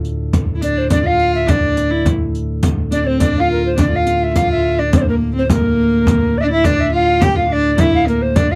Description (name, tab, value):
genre	medieval dance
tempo	105 BPM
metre	2/4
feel	straight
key	D minor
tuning	A4 = 441 Hz
part	chamber organ, sparkling flutes	drone	0.0-8.6 s	D2 to A2	-23 LUFS	equal	none
part	riq	percussion	0.0-8.6 s	none	-26 LUFS	equal	none
part	frame drum	percussion	0.3-8.6 s	none	-20 LUFS	equal	none
part	mellow hollow tenor recorder	melody	0.6-8.6 s	Bb4 to G5	-20 LUFS	equal	none
part	warm viola da gamba	second line	0.6-8.6 s	Bb3 to G4	-20 LUFS	equal	none
room	light reverb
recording	dry, close 1970s-style studio recording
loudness	-15 LUFS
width	mono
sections	0.0-4.4 A section; 4.4-8.6 B section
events	none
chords	none